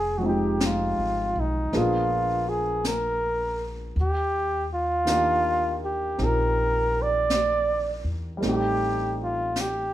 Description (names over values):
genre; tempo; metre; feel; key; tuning
jazz ballad; 54 BPM; 4/4; swing 67% on 8ths; unclear; A4 = 441 Hz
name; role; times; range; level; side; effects
mellow flugelhorn; melody; 0.0-9.9 s; Eb4 to D5; -24 LUFS; equal; none
upright bass; bass; 0.0-9.9 s; F1 to E2; -30 LUFS; equal; none
warm grand piano; accompaniment; 0.2-9.9 s; Eb3 to Ab4; -29 LUFS; right 1 dB; none
jazz brush drum kit; drums; 0.6-9.9 s; brushed snare drum, hi-hat, snare drum; -32 LUFS; left 2 dB; none
room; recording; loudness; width
light reverb; minimal, uncompressed stereo recording; -22 LUFS; side -13 dB against mid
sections
0.0-9.9 A section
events
none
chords
0.0 Fm7; 1.7 Bb7b9; 4.0 Ebmaj9; 8.4 Am7b5